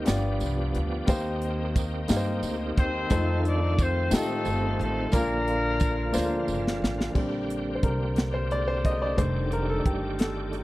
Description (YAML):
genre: slow gospel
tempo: 59 BPM (dotted quarters)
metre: 6/8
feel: straight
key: Bb major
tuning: A4 = 436 Hz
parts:
  - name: clear upright piano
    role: accompaniment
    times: 0.0-10.6 s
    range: G2 to Eb5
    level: -30 LUFS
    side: left 2 dB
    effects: none
  - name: bright tonewheel organ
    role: sustained chords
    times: 0.0-10.6 s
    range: D3 to G4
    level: -33 LUFS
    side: right 2 dB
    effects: slow rotary speaker, overdrive, chorus vibrato
  - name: upright bass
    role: bass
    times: 0.0-10.6 s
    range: F1 to A2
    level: -30 LUFS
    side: equal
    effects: none
  - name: tight funk drum kit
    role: drums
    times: 0.1-10.6 s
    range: crash cymbal, hi-hat, kick drum, snare drum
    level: -25 LUFS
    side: equal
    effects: none
  - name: tambourine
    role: percussion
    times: 0.1-6.8 s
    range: none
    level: -41 LUFS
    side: right 10 dB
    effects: none
  - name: clear horn section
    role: melody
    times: 2.8-6.5 s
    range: A3 to D5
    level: -29 LUFS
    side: left 2 dB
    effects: none
room: little or no reverb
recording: dry, close 1970s-style studio recording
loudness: -24 LUFS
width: side -17 dB against mid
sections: 0.0-7.2 A section; 7.2-10.6 B section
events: drum fill 6.1-7.2; upright piano solo 7.2-10.6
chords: 0.1 G7; 1.1 Cm7/Eb; 3.1 F7; 5.1 Bbmaj7; 7.2 Bb69; 9.2 F13